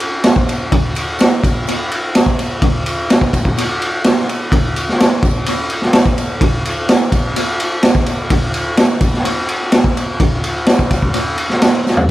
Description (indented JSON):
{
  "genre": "rock",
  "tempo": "127 BPM",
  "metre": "4/4",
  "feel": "straight",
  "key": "none",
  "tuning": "none",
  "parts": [
    { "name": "raw garage drum kit", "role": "drums", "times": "0.0-12.1 s", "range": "kick drum, ride cymbal, snare drum, toms", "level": "-12 LUFS", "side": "equal", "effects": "analog delay" },
    { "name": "tambourine", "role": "percussion", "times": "0.0-12.0 s", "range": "none", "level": "-36 LUFS", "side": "right 6 dB", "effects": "none" }
  ],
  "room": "light reverb",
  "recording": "echo-heavy mix",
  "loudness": "-12 LUFS",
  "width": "side -15 dB against mid",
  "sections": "0.0-12.1 A section",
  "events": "drum fill 11.9",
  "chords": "none"
}